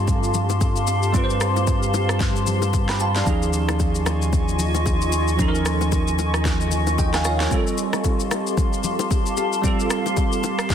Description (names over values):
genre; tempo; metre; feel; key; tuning
amapiano; 113 BPM; 4/4; swing 58% on 16ths; unclear; A4 = 440 Hz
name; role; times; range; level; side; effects
bell-like tine electric piano; accompaniment; 0.0-10.7 s; F3 to B5; -25 LUFS; right 5 dB; ensemble chorus
granular cloud pad; sustained chords; 0.0-10.7 s; F4 to Db6; -25 LUFS; left 2 dB; built-in reverb, sidechain pumping
sub bass with octave; bass; 0.0-7.5 s; Eb2 to G2; -23 LUFS; equal; none
afro-pop drum kit; drums; 0.1-10.7 s; kick drum, rim click, shaker, snare drum; -24 LUFS; equal; none
congas and bongos; percussion; 0.1-10.7 s; none; -31 LUFS; left 10 dB; none
room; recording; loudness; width
little or no reverb; dense, heavily limited modern master; -18 LUFS; side -8 dB against mid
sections
0.0-10.7 A section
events
none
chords
0.0 G9sus4; 3.3 Eb9sus4; 7.5 G9sus4